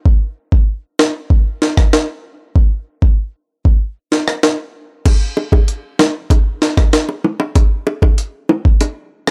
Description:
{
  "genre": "dancehall",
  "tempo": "96 BPM",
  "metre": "4/4",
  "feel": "straight",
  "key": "none",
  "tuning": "none",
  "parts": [
    { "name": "jungle sampler-style drum kit", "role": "drums", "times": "0.1-9.3 s", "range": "crash cymbal, hi-hat, kick drum, rim click, snare drum", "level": "-14 LUFS", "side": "equal", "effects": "none" },
    { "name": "bongos", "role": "percussion", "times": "5.1-9.3 s", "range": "none", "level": "-20 LUFS", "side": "equal", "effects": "none" }
  ],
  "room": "digital ambience",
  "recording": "dry, gritty hardware recording, transformer saturation",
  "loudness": "-15 LUFS",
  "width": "mono",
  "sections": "0.0-5.1 A section; 5.1-9.3 B section",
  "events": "break 3.8-5.1",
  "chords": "none",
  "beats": "| 0.06 0.68 1.31 1.93 | 2.56 3.18 3.81 4.43 | 5.06 5.68 6.31 6.93 | 7.56 8.18 8.81"
}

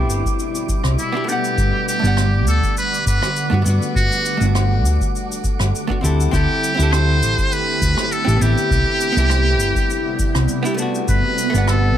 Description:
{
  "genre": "sunset chillout",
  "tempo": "101 BPM",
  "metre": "4/4",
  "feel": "swing 54% on 16ths",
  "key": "G major",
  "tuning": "A4 = 439 Hz",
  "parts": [
    { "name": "hollow-body jazz guitar", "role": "accompaniment", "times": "0.0-12.0 s", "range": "A3 to F#5", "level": "-24 LUFS", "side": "moving between left 5 dB and right 4 dB", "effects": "auto-pan, tape echo" },
    { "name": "shimmering ambient pad", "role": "sustained chords", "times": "0.0-12.0 s", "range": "B2 to F#5", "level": "-25 LUFS", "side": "equal", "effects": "chorus, built-in reverb" },
    { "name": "hollow-body short-scale fingered electric bass", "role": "bass", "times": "0.0-12.0 s", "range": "G1 to G2", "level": "-17 LUFS", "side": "equal", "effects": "none" },
    { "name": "wind-like tuned noise texture", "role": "texture", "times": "0.0-6.3 s", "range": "D6", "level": "-34 LUFS", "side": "right 8 dB", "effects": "built-in reverb" },
    { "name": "cabasa and rim click", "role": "drums", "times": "0.1-11.8 s", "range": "none", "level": "-27 LUFS", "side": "left 1 dB", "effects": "none" },
    { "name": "electronic kick drum", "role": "drums", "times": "0.2-11.2 s", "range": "none", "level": "-22 LUFS", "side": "equal", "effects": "none" },
    { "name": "trumpet with metal mute", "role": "melody", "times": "1.0-12.0 s", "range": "E4 to C5", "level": "-22 LUFS", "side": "equal", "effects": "ping-pong delay" }
  ],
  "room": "light reverb",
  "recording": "none",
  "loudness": "-15 LUFS",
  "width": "side -10 dB against mid",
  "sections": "0.0-6.3 A section; 6.3-12.0 B section",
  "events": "none",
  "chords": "0.0 Gmaj7; 6.3 D7sus4; 8.7 Gmaj7",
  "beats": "0.39 0.98 | 1.58 2.17 2.77 3.36 | 3.96 4.55 5.14 5.74 | 6.33 6.92 7.52 8.11 | 8.71 9.30 9.89 10.49 | 11.08 11.68"
}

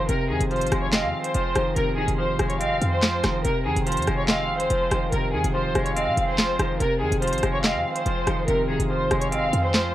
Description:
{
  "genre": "hip hop, drill",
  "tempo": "143 BPM",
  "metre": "4/4",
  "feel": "half-time",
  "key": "F minor",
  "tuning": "A4 = 440 Hz",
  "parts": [
    { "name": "warm studio violin section", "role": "melody", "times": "0.0-9.9 s", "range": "Ab4 to F5", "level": "-25 LUFS", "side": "equal", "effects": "low-pass filter" },
    { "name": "clean electric guitar", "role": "accompaniment", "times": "0.0-9.9 s", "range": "C3 to C4", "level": "-27 LUFS", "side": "equal", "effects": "low-pass filter" },
    { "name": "short 808-style bass", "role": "bass", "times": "0.0-9.9 s", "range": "Eb1 to C3", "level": "-27 LUFS", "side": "equal", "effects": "none" },
    { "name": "drill drum kit", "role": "drums", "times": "0.1-9.8 s", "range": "handclaps, hi-hat, rim click, snare drum", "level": "-26 LUFS", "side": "equal", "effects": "none" },
    { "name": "silver concert flute", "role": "second line", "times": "0.9-9.7 s", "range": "Eb5 to F5", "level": "-34 LUFS", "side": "right 4 dB", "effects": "digital delay" }
  ],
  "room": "light reverb",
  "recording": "worn, warbling old tape, cassette tape, warbly pitch drift",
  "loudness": "-21 LUFS",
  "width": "side -13 dB against mid",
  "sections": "0.0-9.9 A section",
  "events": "none",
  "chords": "0.0 Fm7",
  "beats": "| 0.09 0.51 0.93 1.35 | 1.77 2.19 2.61 3.03 | 3.45 3.87 4.29 4.71 | 5.12 5.54 5.96 6.38 | 6.80 7.22 7.64 8.06 | 8.48 8.90 9.32 9.74"
}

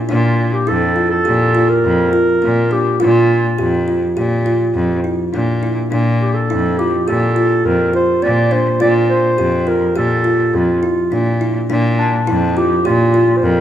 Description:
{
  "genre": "contemporary instrumental, chamber music in an uneven meter",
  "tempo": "104 BPM",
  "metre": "5/4",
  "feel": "straight",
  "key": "Bb lydian",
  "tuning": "A4 = 439 Hz",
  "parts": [
    { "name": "kalimba", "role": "arpeggios", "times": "0.0-13.6 s", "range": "C4 to G4", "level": "-17 LUFS", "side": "equal", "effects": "none" },
    { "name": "mellow clarinet", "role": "melody", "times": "0.1-13.6 s", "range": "D4 to D5", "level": "-18 LUFS", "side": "equal", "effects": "none" },
    { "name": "bright cello", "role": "bass", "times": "0.1-13.6 s", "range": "F2 to Bb2", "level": "-17 LUFS", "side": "left 1 dB", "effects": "none" }
  ],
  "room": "moderate recital hall reverb, RT60 1.5 s",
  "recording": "none",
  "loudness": "-13 LUFS",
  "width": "side -10 dB against mid",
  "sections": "0.0-13.6 A section",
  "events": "none",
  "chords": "0.0 Bb",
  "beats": "| 0.09 0.67 1.25 1.84 2.42 | 3.00 3.59 4.17 4.75 5.33 | 5.91 6.49 7.07 7.65 8.22 | 8.80 9.38 9.96 10.54 11.12 | 11.69 12.27 12.85 13.43"
}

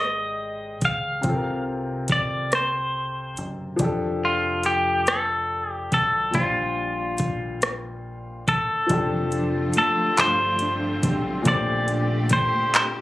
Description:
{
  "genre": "slow six-eight R&B",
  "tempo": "47 BPM (dotted quarters)",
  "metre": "6/8",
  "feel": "straight",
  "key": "F major",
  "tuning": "A4 = 442 Hz",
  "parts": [
    { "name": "clean electric guitar", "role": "melody", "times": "0.0-12.8 s", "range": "F4 to F5", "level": "-23 LUFS", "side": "equal", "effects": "slapback echo" },
    { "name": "clear concert grand piano", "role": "accompaniment", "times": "0.0-13.0 s", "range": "Bb2 to D5", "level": "-29 LUFS", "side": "left 3 dB", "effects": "none" },
    { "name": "deep dub fingered electric bass", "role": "bass", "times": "0.0-12.3 s", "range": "F1 to Db2", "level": "-32 LUFS", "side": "equal", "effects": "none" },
    { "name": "smooth R&B drum kit", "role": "drums", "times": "0.8-12.9 s", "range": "handclaps, hi-hat, kick drum, rim click", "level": "-23 LUFS", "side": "equal", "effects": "none" },
    { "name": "mellow electric guitar", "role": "second line", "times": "8.9-13.0 s", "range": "Bb2 to G4", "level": "-28 LUFS", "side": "right 1 dB", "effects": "tremolo" },
    { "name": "clear symphonic string section", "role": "sustained chords", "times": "8.9-13.0 s", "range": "Bb2 to G4", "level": "-33 LUFS", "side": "left 2 dB", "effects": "none" }
  ],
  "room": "light reverb",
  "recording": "recorded on a phone in the room, club reverb, compression",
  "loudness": "-21 LUFS",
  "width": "side -16 dB against mid",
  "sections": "0.0-8.9 A section; 8.9-13.0 B section",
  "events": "none",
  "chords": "0.0 Abmaj9; 1.2 C7sus4; 3.8 F69; 6.3 Bb69; 8.9 F69; 11.5 Bbmaj13",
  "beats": "| 1.24 2.52 | 3.79 5.07 | 6.35 7.62 | 8.90 10.18 | 11.45 12.73"
}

